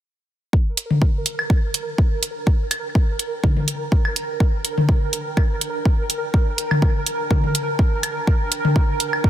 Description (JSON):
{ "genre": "minimal techno", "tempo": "124 BPM", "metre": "4/4", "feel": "swing 54% on 16ths", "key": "G minor", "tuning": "A4 = 440 Hz", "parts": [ { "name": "electronic kick drum", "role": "drums", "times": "0.5-9.3 s", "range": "none", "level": "-17 LUFS", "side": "equal", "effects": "overdrive" }, { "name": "granular cloud pad", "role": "texture", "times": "2.3-9.3 s", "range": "D4 to Bb5", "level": "-36 LUFS", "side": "right 2 dB", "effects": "built-in reverb, sidechain pumping" }, { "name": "pulsing gated texture", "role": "texture", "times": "0.7-9.3 s", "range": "Bb4", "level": "-27 LUFS", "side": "right 2 dB", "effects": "chorus, built-in reverb, sidechain pumping" }, { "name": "electronic hi-hat", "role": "drums", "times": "0.8-9.1 s", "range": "none", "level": "-22 LUFS", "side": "right 3 dB", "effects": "none" }, { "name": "electronic toms and woodblock", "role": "percussion", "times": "0.9-9.2 s", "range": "none", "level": "-25 LUFS", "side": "left 2 dB", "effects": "tape echo" } ], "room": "light reverb", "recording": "none", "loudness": "-18 LUFS", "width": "side -12 dB against mid", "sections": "0.5-9.3 A section", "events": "fade-in on ambient pad 0.5-9.3", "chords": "0.5 Gm" }